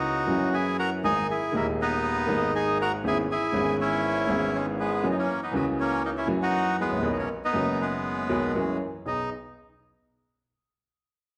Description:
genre	tango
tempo	120 BPM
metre	4/4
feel	rubato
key	B major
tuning	A4 = 440 Hz
part	bandoneon	melody	0.0-9.3 s	F#3 to A#4	-29 LUFS	equal	none
part	warm grand piano	accompaniment	0.0-9.3 s	D#1 to A#4	-30 LUFS	equal	none
room	wet large studio reverb, RT60 1.2 s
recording	heard from further back in the room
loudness	-26 LUFS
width	mono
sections	0.0-9.1 A section; 9.1-11.1 B section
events	none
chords	0.0 F#7; 1.0 G#sus2; 3.0 E6/G#; 5.0 F#7; 7.0 B6; 8.6 F#7; 9.1 B6

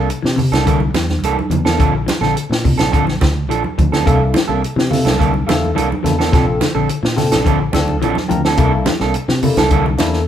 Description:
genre	afrobeat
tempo	106 BPM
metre	4/4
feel	straight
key	C mixolydian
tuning	A4 = 437 Hz
part	semi-hollow electric guitar	arpeggios	0.0-9.9 s	C3 to F3	-20 LUFS	left 5 dB	none
part	electric guitar through a small old amp	stabs	0.0-10.0 s	E3 to A4	-20 LUFS	right 6 dB	vibrato effect
part	fingered electric bass	bass	0.0-10.3 s	Bb1 to C3	-20 LUFS	equal	none
part	compact cocktail drum kit	drums	0.1-10.2 s	hi-hat, kick drum, snare drum	-18 LUFS	equal	none
part	congas	percussion	0.4-10.1 s	none	-22 LUFS	right 4 dB	none
part	barky tine electric piano	accompaniment	4.1-10.2 s	Bb3 to Bb4	-21 LUFS	left 3 dB	overdrive, phaser
room	light reverb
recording	band playing live in one room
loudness	-13 LUFS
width	side -10 dB against mid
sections	0.0-10.3 A section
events	none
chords	0.0 C13; 1.8 Bbmaj9; 4.1 C13; 6.3 Bbmaj9; 8.6 C13

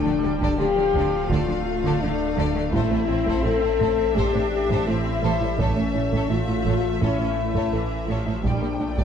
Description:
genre	cinematic, hybrid orchestral and electronic film score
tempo	84 BPM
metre	4/4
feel	straight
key	unclear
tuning	A4 = 445 Hz
part	warm chamber violin section	melody	0.0-9.0 s	E5 to G5	-35 LUFS	left 2 dB	none
part	rich studio violin section	second line	0.0-9.0 s	A4 to D5	-34 LUFS	equal	none
part	rich symphonic viola section	accompaniment	0.0-9.0 s	E3 to D4	-31 LUFS	right 3 dB	none
part	warm French horn section	sustained chords	0.0-9.0 s	C#4 to A4	-24 LUFS	left 7 dB	none
part	phased detuned saw bass	bass	0.0-9.0 s	D1 to Bb1	-30 LUFS	right 1 dB	phaser
part	soft round pluck	arpeggios	0.1-9.0 s	D3 to A4	-33 LUFS	right 4 dB	none
part	warm symphonic cello section	bass	0.1-9.0 s	A2 to D3	-29 LUFS	right 4 dB	none
part	rich symphonic double bass section	bass	0.2-8.9 s	A1 to D2	-30 LUFS	right 4 dB	none
part	taiko ensemble	drums	0.4-9.0 s	none	-30 LUFS	right 1 dB	none
room	moderate concert hall reverb, RT60 1.8 s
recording	dark, warm production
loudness	-20 LUFS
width	side -8 dB against mid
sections	0.0-9.0 A section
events	none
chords	0.0 Dm; 2.7 Am; 5.6 A; 8.4 Gm/Bb

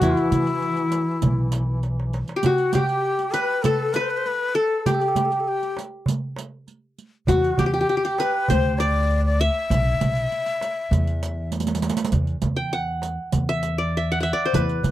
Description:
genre	Turkish makam ensemble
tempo	99 BPM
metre	4/4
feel	straight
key	E makam nihavent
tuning	A4 = 440 Hz
part	qanun	melody	0.0-14.9 s	E4 to G5	-23 LUFS	left 1 dB	none
part	breathy bright ney	second line	0.0-11.5 s	E4 to E5	-26 LUFS	left 4 dB	none
part	upright bass	bass	0.0-2.2, 7.3-14.9 s	B1 to E3	-24 LUFS	equal	none
part	mellow duduk	drone	0.0-2.5 s	E3	-32 LUFS	equal	none
part	darbuka	percussion	0.0-14.9 s	none	-26 LUFS	right 2 dB	none
part	riq	percussion	0.0-14.9 s	none	-30 LUFS	right 6 dB	none
room	little or no reverb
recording	dry, close 1970s-style studio recording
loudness	-20 LUFS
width	side -13 dB against mid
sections	0.0-2.4 A section; 2.4-12.1 B section; 12.1-14.9 C section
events	drum fill 1.8-2.4, 11.5-12.1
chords	none

